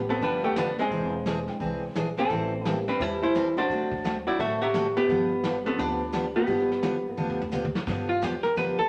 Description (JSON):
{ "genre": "country, western swing", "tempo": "172 BPM", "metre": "4/4", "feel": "swing 63% on 8ths", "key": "G mixolydian", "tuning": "A4 = 443 Hz", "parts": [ { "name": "vintage hollow-body jazz guitar", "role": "melody", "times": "0.0-7.5 s", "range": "B3 to E5", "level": "-30 LUFS", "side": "equal", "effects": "none" }, { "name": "archtop guitar, miked and amplified", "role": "second line", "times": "0.0-8.9 s", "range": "Ab3 to B4", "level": "-32 LUFS", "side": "equal", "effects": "none" }, { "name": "upright bass", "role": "bass", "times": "0.0-8.8 s", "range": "E1 to G2", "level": "-41 LUFS", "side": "equal", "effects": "none" }, { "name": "picked steel-string acoustic guitar", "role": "accompaniment", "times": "0.2-8.8 s", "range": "D3 to A4", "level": "-33 LUFS", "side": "equal", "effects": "none" }, { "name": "vintage brush drum kit", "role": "drums", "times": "0.2-8.9 s", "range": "brushed snare drum, crash cymbal, hi-hat, kick drum, snare drum, toms", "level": "-38 LUFS", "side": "equal", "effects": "none" }, { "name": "honky-tonk upright piano", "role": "accompaniment", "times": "1.5-7.0 s", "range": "F3 to G5", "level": "-40 LUFS", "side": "equal", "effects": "none" } ], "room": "wet studio reverb, RT60 0.7 s", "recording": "none", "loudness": "-27 LUFS", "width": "mono", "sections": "0.0-7.9 A section; 7.9-8.9 B section", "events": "drum fill 7.2-7.9; hollow-body jazz guitar solo 7.9-8.9", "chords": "0.0 G7; 0.9 E7alt; 2.3 Am7; 3.7 D7; 5.1 G7" }